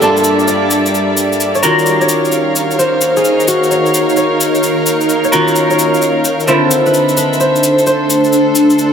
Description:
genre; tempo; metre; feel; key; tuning
UK garage, two-step garage; 130 BPM; 4/4; swing 66% on 16ths; unclear; A4 = 440 Hz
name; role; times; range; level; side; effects
concert harp; melody; 0.0-8.9 s; Gb4 to D5; -15 LUFS; left 1 dB; tape echo
rich chamber violin section; sustained chords; 0.0-8.9 s; G3 to F5; -19 LUFS; equal; none
clean electric guitar; stabs; 0.0-8.9 s; G2 to Bb4; -15 LUFS; equal; phaser, tape echo
cabasa; percussion; 0.0-8.9 s; none; -19 LUFS; left 3 dB; none
granular cloud pad; texture; 0.0-8.9 s; D4 to D5; -16 LUFS; right 1 dB; built-in reverb
room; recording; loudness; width
wet studio reverb, RT60 0.6 s; none; -10 LUFS; side -7 dB against mid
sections
0.0-8.9 A section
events
filter sweep on clean electric guitar 0.0-8.9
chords
0.0 Gm7; 1.6 Ebm7; 6.5 Dm7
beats
| 0.02 0.48 0.94 1.40 | 1.86 2.32 2.79 3.25 | 3.71 4.17 4.63 5.09 | 5.55 6.02 6.48 6.94 | 7.40 7.86 8.32 8.79

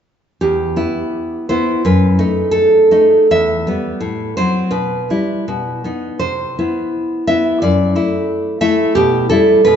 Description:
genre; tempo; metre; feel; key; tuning
romantic piece for solo classical guitar; 76-92 BPM; 2/4; rubato; E minor; A4 = 438 Hz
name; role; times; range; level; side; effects
nylon-string guitar; solo; 0.4-9.8 s; E2 to E5; -13 LUFS; equal; none
room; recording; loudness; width
wet recital hall reverb, RT60 1.8 s; recorded in a church or concert hall, nothing above 7.8 kHz; -13 LUFS; side -8 dB against mid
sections
0.4-9.8 A section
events
none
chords
0.4 Em; 1.9 D#dim/F#; 3.3 Em; 4.0 F#dim/A; 4.7 Em/B; 5.5 B; 6.2 Cmaj7; 7.6 Dadd9/F#; 9.0 Em/B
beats
| 0.42 1.14 | 1.85 2.54 | 3.31 4.03 | 4.75 5.48 | 6.22 6.93 | 7.63 8.30 | 8.96 9.67

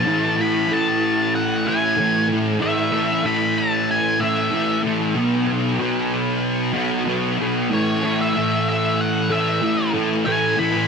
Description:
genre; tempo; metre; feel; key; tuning
rock; 94 BPM; 4/4; straight; unclear; A4 = 440 Hz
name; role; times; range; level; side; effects
octave-fuzz lead guitar; melody; 0.0-10.9 s; C#5 to B5; -22 LUFS; left 1 dB; distortion, analog delay
thick fuzz guitar; riff; 0.0-10.9 s; A2 to B3; -19 LUFS; equal; distortion, ensemble chorus
room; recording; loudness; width
moderate plate reverb, RT60 2.6 s; none; -18 LUFS; side -5 dB against mid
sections
0.0-10.3 A section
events
none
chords
0.1 A5; 5.2 B5; 7.7 A5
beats
| 0.08 0.71 1.35 1.98 | 2.62 3.25 3.89 4.52 | 5.16 5.80 6.43 7.07 | 7.71 8.34 8.98 9.62 | 10.26

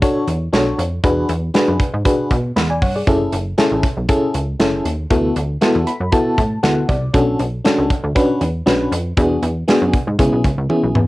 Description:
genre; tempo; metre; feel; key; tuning
early-eighties boogie funk; 118 BPM; 4/4; straight; unclear; A4 = 440 Hz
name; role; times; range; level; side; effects
FM electric piano with tremolo; accompaniment; 0.0-11.0 s; B3 to B5; -17 LUFS; left 1 dB; none
modern studio drum kit; drums; 0.0-11.1 s; hi-hat, kick drum, snare drum, toms; -19 LUFS; right 1 dB; cassette tape
plucky analog bass; bass; 0.3-11.1 s; F#1 to B2; -20 LUFS; equal; none
room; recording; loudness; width
little or no reverb; home recording on cassette; -15 LUFS; side -19 dB against mid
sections
0.0-11.1 A section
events
FM electric piano fill 5.6-7.1; drum fill 10.7-11.1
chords
0.0 Bm7; 1.0 E9; 3.1 F#m9; 5.1 D6; 7.1 Bm7; 9.2 E9; 10.2 C#m7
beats
0.02 0.53 | 1.04 1.55 2.06 2.56 | 3.07 3.58 4.09 4.60 | 5.11 5.61 6.12 6.63 | 7.14 7.65 8.16 8.66 | 9.17 9.68 10.19 10.70

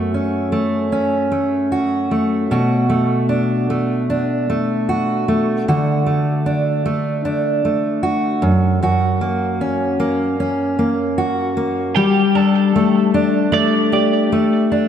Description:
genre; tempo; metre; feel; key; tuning
acoustic pop; 76 BPM; 4/4; swing 55% on 16ths; unclear; A4 = 440 Hz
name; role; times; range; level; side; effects
fingerpicked steel-string acoustic guitar; accompaniment; 0.0-14.9 s; F#2 to G4; -15 LUFS; equal; none
twelve-string electric guitar; arpeggios; 12.0-14.1 s; G4 to D5; -21 LUFS; right 7 dB; wide subtle chorus, tape echo
room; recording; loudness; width
wet lush hall reverb, RT60 2.8 s; dreamy mix soaked in reverb; -15 LUFS; side -9 dB against mid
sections
0.0-12.0 A section; 12.0-14.9 B section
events
none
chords
0.0 F#m; 2.5 Bm7; 5.7 D; 8.4 F#; 12.0 Gsus2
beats
0.13 0.93 1.72 | 2.50 3.29 4.08 4.87 | 5.66 6.45 7.24 8.02 | 8.81 9.60 10.39 11.17 | 11.96 12.75 13.54 14.32

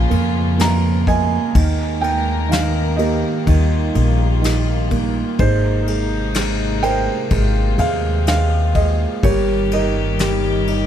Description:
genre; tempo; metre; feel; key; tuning
acoustic folk-pop ballad; 62 BPM; 4/4; straight; Ab major; A4 = 441 Hz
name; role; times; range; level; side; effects
felt-muted upright piano; melody; 0.0-10.9 s; Eb3 to Bb5; -20 LUFS; right 4 dB; slapback echo
warm chamber string section; sustained chords; 0.0-10.9 s; C3 to Bb4; -24 LUFS; left 3 dB; none
upright bass; bass; 0.0-10.9 s; G1 to F2; -18 LUFS; left 1 dB; none
soft brush drum kit; drums; 0.1-10.9 s; kick drum, ride cymbal, snare drum; -24 LUFS; left 2 dB; none
room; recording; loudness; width
little or no reverb; close, detailed microphones; -15 LUFS; side -10 dB against mid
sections
0.0-10.9 A section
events
none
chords
0.0 Bbm; 1.5 Ebsus4; 3.5 Ebadd9; 5.4 Abadd9; 9.2 Eb/G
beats
0.58 | 1.54 2.51 3.47 4.43 | 5.40 6.36 7.32 8.28 | 9.24 10.21

